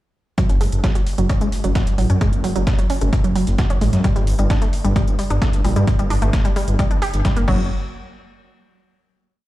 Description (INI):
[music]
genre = driving peak-time techno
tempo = 131 BPM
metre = 4/4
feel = straight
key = unclear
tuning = A4 = 440 Hz
[part]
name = analog pluck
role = riff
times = 0.4-7.7 s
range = F#3 to G4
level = -23 LUFS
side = right 1 dB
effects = chorus, sidechain pumping, ping-pong delay
[part]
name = dusty soul sampler-style drum kit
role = drums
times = 0.4-7.4 s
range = hi-hat, snare drum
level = -35 LUFS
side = equal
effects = overdrive, sidechain pumping on hats, high-pass filter on hats, high-pass filter on snare, high-pass filter on room
[part]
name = electronic kick drum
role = drums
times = 0.4-7.6 s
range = none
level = -19 LUFS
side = equal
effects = none
[part]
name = techno drum kit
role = drums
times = 0.4-7.6 s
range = crash cymbal, hi-hat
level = -37 LUFS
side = right 1 dB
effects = none
[part]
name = detuned saw bass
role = bass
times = 0.5-7.7 s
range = F#1 to G2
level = -19 LUFS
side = equal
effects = sidechain pumping
[sound]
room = little or no reverb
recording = played on a big sound system in a bare room, large studio reverb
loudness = -16 LUFS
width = side -16 dB against mid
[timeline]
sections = 0.4-7.7 groove; 7.7-9.5 final hit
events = filter sweep on synth arpeggio sound 0.4-7.7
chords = none